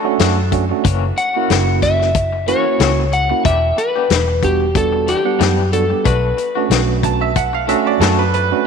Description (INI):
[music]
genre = straight-eighth soul blues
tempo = 92 BPM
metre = 4/4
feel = swing 56% on 16ths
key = B minor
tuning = A4 = 437 Hz
[part]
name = bright upright piano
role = second line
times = 0.0-1.0, 7.0-8.7 s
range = A4 to A5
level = -20 LUFS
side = right 8 dB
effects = none
[part]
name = tine electric piano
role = accompaniment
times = 0.0-8.7 s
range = G3 to F#5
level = -20 LUFS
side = right 12 dB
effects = medium stereo tremolo
[part]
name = electric guitar through a small old amp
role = stabs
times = 0.0-8.6 s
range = E3 to G4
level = -25 LUFS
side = left 10 dB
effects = tremolo
[part]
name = vintage muted fingered electric bass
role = bass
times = 0.2-8.5 s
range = E1 to F#2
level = -18 LUFS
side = equal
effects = none
[part]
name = warm soul drum kit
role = drums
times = 0.2-8.5 s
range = hi-hat, kick drum, snare drum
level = -19 LUFS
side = left 7 dB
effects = none
[part]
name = electric slide guitar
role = melody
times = 1.2-8.7 s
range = G4 to F#5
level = -18 LUFS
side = left 2 dB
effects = none
[sound]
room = moderate echo chamber reverb, RT60 2.2 s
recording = 1960s-style stereo with parts hard left and right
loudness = -13 LUFS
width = side -6 dB against mid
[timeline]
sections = 0.0-8.7 A section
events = none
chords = 0.0 Bm7 (rootless); 0.8 F#7; 3.5 Em7; 6.1 Bm7